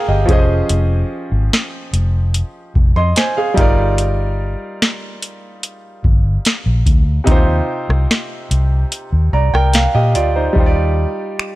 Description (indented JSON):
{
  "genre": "contemporary R&B",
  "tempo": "73 BPM",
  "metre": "4/4",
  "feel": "straight",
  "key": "Eb major",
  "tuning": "A4 = 440 Hz",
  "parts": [
    { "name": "clear concert grand piano", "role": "accompaniment", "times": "0.0-11.6 s", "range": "C3 to C6", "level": "-19 LUFS", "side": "right 2 dB", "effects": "none" },
    { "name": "vintage muted fingered electric bass", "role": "bass", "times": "0.1-11.0 s", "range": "F1 to Bb2", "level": "-15 LUFS", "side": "equal", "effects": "none" },
    { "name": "booming analog drum machine", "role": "drums", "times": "0.3-11.6 s", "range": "finger snaps, hi-hat, kick drum, rim click, snare drum", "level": "-15 LUFS", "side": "equal", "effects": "none" }
  ],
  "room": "little or no reverb",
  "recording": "dry, gritty hardware recording",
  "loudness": "-13 LUFS",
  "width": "side -17 dB against mid",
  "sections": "0.0-10.6 A section",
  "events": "kick muted 8.9-10.6",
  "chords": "0.3 Dbmaj7/F; 3.6 Ebmaj7/G; 7.3 Eb6; 10.6 Ebmaj7"
}